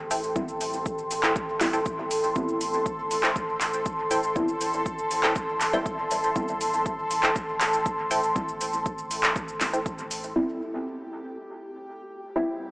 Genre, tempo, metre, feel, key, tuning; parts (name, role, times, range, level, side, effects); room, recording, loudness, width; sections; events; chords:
dub techno; 120 BPM; 4/4; straight; A minor; A4 = 440 Hz
dark analog pad; sustained chords; 0.0-12.7 s; A4 to C6; -27 LUFS; equal; chorus, sidechain pumping
filtered dub chord stab; stabs; 0.0-12.5 s; G3 to E4; -31 LUFS; equal; phaser, sidechain pumping, dub echo
warm sub bass; bass; 0.0-10.3 s; A1; -46 LUFS; equal; sidechain pumping
bubbling stepped-filter texture; texture; 0.0-12.7 s; G4 to A4; -36 LUFS; right 1 dB; chorus, built-in reverb, sidechain pumping
filtered dub chord stab; riff; 0.1-9.8 s; E4 to G5; -32 LUFS; equal; chorus, sidechain pumping, dub echo
deep house drum kit; drums; 0.1-10.3 s; handclaps, hi-hat, shaker; -28 LUFS; equal; overdrive, dub echo
electronic kick drum; drums; 0.4-10.0 s; -34 LUFS; equal; overdrive
moderate huge ambient reverb, RT60 4.0 s; small speaker sound; -24 LUFS; side -25 dB against mid
0.0-10.4 A section; 10.4-12.7 B section
0.0 Am7